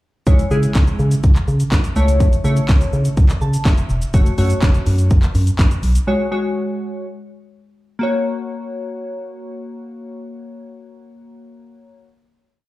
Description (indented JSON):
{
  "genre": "dance-pop",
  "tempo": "124 BPM",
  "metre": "4/4",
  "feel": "straight",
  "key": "unclear",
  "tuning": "A4 = 440 Hz",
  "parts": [
    { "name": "glassy digital keys", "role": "accompaniment", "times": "0.3-12.1 s", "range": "G#3 to A5", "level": "-23 LUFS", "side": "left 1 dB", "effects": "chorus, slapback echo" },
    { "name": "organ-like FM bass", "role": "bass", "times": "0.3-6.0 s", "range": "E1 to C#3", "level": "-17 LUFS", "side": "equal", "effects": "sidechain pumping" },
    { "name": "house drum kit", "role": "drums", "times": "0.3-6.1 s", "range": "handclaps, hi-hat, kick drum, shaker, snare drum", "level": "-15 LUFS", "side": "equal", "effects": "overdrive" }
  ],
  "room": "little or no reverb",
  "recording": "live gig heard through the venue's PA, club reverb",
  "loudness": "-14 LUFS",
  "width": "side -18 dB against mid",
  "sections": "0.3-8.0 pre-chorus; 8.0-11.9 final chord",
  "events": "synth keys fill 3.2-4.1",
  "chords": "0.3 C#m; 2.0 A/C#; 4.1 F#m; 6.1 C#sus4; 8.0 F#"
}